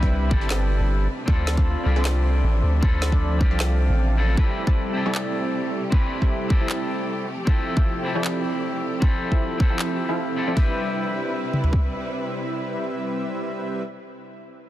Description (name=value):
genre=future bass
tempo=155 BPM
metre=4/4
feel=swing 53% on 16ths, half-time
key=C major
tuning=A4 = 440 Hz
part: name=electric guitar at the edge of break-up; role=accompaniment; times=0.0-13.9 s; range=C4 to B4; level=-30 LUFS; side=left 1 dB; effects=sidechain pumping, tape echo
part: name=muted symphonic string section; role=sustained chords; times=0.0-13.8 s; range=C3 to B4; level=-34 LUFS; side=equal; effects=sidechain pumping
part: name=supersaw stab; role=riff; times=0.0-13.8 s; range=F3 to A5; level=-28 LUFS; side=equal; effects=sidechain pumping, low-pass filter, tape echo
part: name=long sustained 808-style bass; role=bass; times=0.0-4.4 s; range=G1 to D2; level=-21 LUFS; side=equal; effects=tube saturation, sidechain pumping
part: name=trap drum kit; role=drums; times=0.0-11.8 s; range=kick drum, toms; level=-20 LUFS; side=equal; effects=none
part: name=electronic snare drum and handclaps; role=drums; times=0.5-9.9 s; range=none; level=-32 LUFS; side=equal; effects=none
room=little or no reverb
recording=dense, heavily limited modern master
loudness=-20 LUFS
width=side -14 dB against mid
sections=0.0-10.6 A section; 10.6-13.7 B section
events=filter sweep on supersaw synth 0.0-10.6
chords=0.0 Cmaj7; 1.1 Dm7; 4.4 Am7; 7.3 Fmaj7; 10.6 Cmaj7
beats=0.12 0.50 0.89 | 1.28 1.66 2.05 2.44 | 2.83 3.21 3.60 3.99 | 4.37 4.76 5.15 5.54 | 5.92 6.31 6.70 7.08 | 7.47 7.86 8.24 8.63 | 9.02 9.41 9.79 10.18 | 10.57 10.95 11.34 11.73 | 12.12 12.50 12.89 13.28